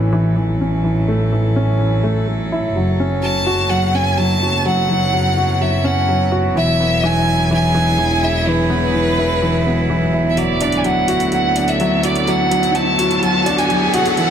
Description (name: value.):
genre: piano and strings electronica.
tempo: 126 BPM.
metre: 4/4.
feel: straight.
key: unclear.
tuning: A4 = 440 Hz.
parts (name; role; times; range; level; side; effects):
rich string quartet; sustained chords; 0.0-14.3 s; D2 to A4; -22 LUFS; right 2 dB; none.
warm concert grand piano; riff; 0.0-14.3 s; E3 to F#4; -19 LUFS; left 1 dB; ping-pong delay.
rich symphonic double bass section; bass; 0.0-10.3 s; E1 to A1; -20 LUFS; equal; none.
bright violin; melody; 3.2-14.3 s; B4 to A5; -18 LUFS; equal; low-pass filter.
electronic hi-hat; drums; 10.4-14.3 s; none; -29 LUFS; right 2 dB; overdrive.
riser; sound effects; 11.5-14.3 s; none; -24 LUFS; left 1 dB; none.
room: wet recital hall reverb, RT60 1.4 s, studio ambience.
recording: none.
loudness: -14 LUFS.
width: side -8 dB against mid.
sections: 0.0-10.4 A section; 10.4-14.3 B section.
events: fade-in on string quartet 0.0-10.4; build-up 10.4-14.3; riser 11.5-14.3.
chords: 0.0 A6; 2.7 F#m; 6.6 E; 10.4 D.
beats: 0.37 | 0.84 1.32 1.80 2.27 | 2.75 3.23 3.70 4.18 | 4.65 5.13 5.61 6.08 | 6.56 7.04 7.51 7.99 | 8.46 8.94 9.42 9.89 | 10.37 10.85 11.32 11.80 | 12.27 12.75 13.23 13.70 | 14.18.